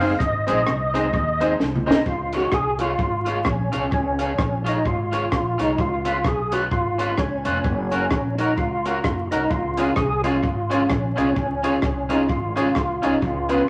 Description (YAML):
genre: ska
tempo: 129 BPM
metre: 4/4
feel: swing 59% on 8ths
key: Db major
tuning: A4 = 440 Hz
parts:
  - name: percussive tonewheel organ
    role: melody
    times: 0.0-13.7 s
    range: Db4 to F5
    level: -26 LUFS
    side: equal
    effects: overdrive, chorus vibrato, slow rotary speaker
  - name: electric guitar at the edge of break-up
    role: accompaniment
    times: 0.0-13.6 s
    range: Cb4 to Db5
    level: -30 LUFS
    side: equal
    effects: spring reverb, tape echo
  - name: bright upright piano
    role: stabs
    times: 0.0-2.0, 9.8-13.6 s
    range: C4 to Db5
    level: -26 LUFS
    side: equal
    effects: none
  - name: upright bass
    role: bass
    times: 0.0-13.6 s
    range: F1 to Eb2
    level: -30 LUFS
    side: equal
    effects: none
  - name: compact cocktail drum kit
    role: drums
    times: 0.0-13.6 s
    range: hi-hat, kick drum, rim click, snare drum, toms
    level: -28 LUFS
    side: equal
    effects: tape echo
room: wet studio reverb, RT60 0.8 s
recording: vinyl crackle, lossy compression artefacts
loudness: -22 LUFS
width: mono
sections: 0.0-2.1 A section; 2.1-13.7 B section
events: drum fill 1.6-2.1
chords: 0.0 Ab; 2.1 Db; 5.8 Db7; 7.6 Gb; 9.5 Db